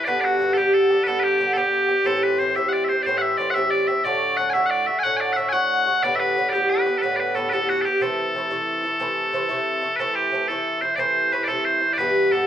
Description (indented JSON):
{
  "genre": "celtic folk, Celtic slide",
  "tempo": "121 BPM (dotted quarters)",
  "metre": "12/8",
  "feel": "straight",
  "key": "A dorian",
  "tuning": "A4 = 440 Hz",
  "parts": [
    { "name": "loud bright bagpipes", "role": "melody", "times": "0.0-12.5 s", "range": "F#4 to G#5", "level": "-21 LUFS", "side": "left 1 dB", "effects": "none" },
    { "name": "Irish bouzouki", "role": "accompaniment", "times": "0.0-12.5 s", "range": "G2 to G4", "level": "-22 LUFS", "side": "right 1 dB", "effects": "none" }
  ],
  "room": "moderate large studio reverb, RT60 1.2 s",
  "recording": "band playing live in one room",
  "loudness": "-19 LUFS",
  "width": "side -10 dB against mid",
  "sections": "0.0-10.0 A section; 10.0-12.5 B section",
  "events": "none",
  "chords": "0.1 G; 2.1 Am7; 4.0 D; 6.0 Gadd9; 8.0 Am"
}